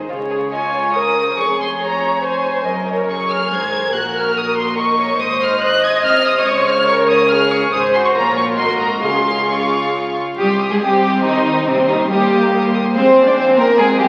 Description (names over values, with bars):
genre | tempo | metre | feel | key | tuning
quick classical-period movement for string orchestra | 141 BPM | 3/4 | straight | Db major, C minor from 10.4 s | A4 = 442 Hz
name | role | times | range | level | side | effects
warm symphonic violin section | second line | 0.1-14.1 s | C4 to F5 | -19 LUFS | equal | none
dark symphonic viola section | accompaniment | 0.1-14.1 s | G3 to Eb5 | -23 LUFS | equal | none
rich symphonic double bass section | bass | 0.1-14.1 s | F1 to F2 | -34 LUFS | equal | none
warm symphonic cello section | bass | 0.1-14.1 s | F2 to D4 | -26 LUFS | equal | none
warm chamber violin section | melody | 0.5-14.1 s | F5 to Ab6 | -22 LUFS | equal | none
room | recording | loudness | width
wet scoring stage reverb, RT60 2.0 s | very old 78 rpm record, vinyl crackle, faint mains hum | -16 LUFS | mono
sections
0.1-10.4 A section; 10.4-14.1 B section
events
none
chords
0.1 Db; 1.4 Db/F; 2.7 Gb; 3.9 Gb/Bb; 5.2 Ab; 6.5 Db5; 7.7 Ab; 8.2 Bbm; 8.6 Ab7; 9.0 Db; 10.4 Cm; 11.7 Cm/Eb; 12.9 Fm